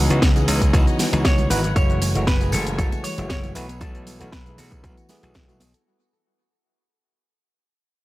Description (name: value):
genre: nu-disco, nu disco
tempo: 117 BPM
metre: 4/4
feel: swing 53% on 16ths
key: unclear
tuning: A4 = 439 Hz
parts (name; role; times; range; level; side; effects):
- tine electric piano; accompaniment; 0.0-5.6 s; E3 to G#4; -27 LUFS; equal; vintage 12-bit sampler grit, sidechain pumping, dub echo
- dark studio violin section; sustained chords; 0.0-5.8 s; B3 to G#5; -33 LUFS; left 1 dB; sidechain pumping
- soft round pluck; arpeggios; 0.0-5.8 s; C#3 to A4; -34 LUFS; left 5 dB; none
- glassy slap bass; bass; 0.0-5.7 s; F#1 to C#2; -23 LUFS; equal; tube saturation
- house drum kit; drums; 0.1-5.8 s; hi-hat, shaker, snare drum; -26 LUFS; equal; overdrive
- tambourine and congas; percussion; 0.1-5.8 s; none; -33 LUFS; right 3 dB; dub echo
- electronic kick drum; drums; 0.2-5.5 s; none; -20 LUFS; equal; overdrive
- electric guitar with an envelope filter; melody; 1.2-5.6 s; F#4 to C#5; -30 LUFS; right 1 dB; lush chorus, dub echo
room: little or no reverb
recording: echo-heavy mix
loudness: -17 LUFS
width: side -18 dB against mid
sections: 0.0-5.9 A section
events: drop 0.0-5.9; fade-out 0.0-5.9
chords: 0.0 C#m11; 1.8 F#m9; 3.6 B7sus4